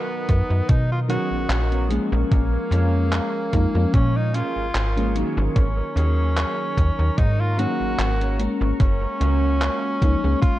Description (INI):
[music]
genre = vaporwave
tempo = 74 BPM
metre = 4/4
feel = swing 55% on 16ths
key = unclear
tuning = A4 = 439 Hz
[part]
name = edgy tenor saxophone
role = melody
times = 0.0-10.6 s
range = A#3 to F#4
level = -28 LUFS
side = equal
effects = vintage 12-bit sampler grit, tape echo
[part]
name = FM electric piano with soft pad layer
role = accompaniment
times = 0.0-10.6 s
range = D#3 to A#4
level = -26 LUFS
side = left 2 dB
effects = wide subtle chorus
[part]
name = lush unison pad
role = sustained chords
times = 0.0-10.6 s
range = A#4 to C#6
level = -36 LUFS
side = right 1 dB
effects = chorus
[part]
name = electric guitar at the edge of break-up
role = riff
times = 0.0-10.0 s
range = B3 to C#5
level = -32 LUFS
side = right 3 dB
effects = analog chorus, tape echo
[part]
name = slap-like FM bass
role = bass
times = 0.3-10.3 s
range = F#1 to B2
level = -21 LUFS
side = equal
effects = none
[part]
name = detuned 8-bit digital drum machine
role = drums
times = 0.3-10.6 s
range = handclaps, hi-hat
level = -30 LUFS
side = equal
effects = gated reverb
[part]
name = electronic kick drum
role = drums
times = 0.3-10.6 s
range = none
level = -20 LUFS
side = equal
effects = none
[sound]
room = little or no reverb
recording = cassette tape, nothing above 10.8 kHz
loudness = -19 LUFS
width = side -15 dB against mid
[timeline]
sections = 0.0-10.6 A section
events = none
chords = 0.0 Bmaj7; 1.9 A#m7; 5.2 G#9sus4; 8.8 F#maj7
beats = 0.69 1.50 | 2.32 3.13 3.94 4.75 | 5.56 6.37 7.18 7.99 | 8.80 9.61 10.42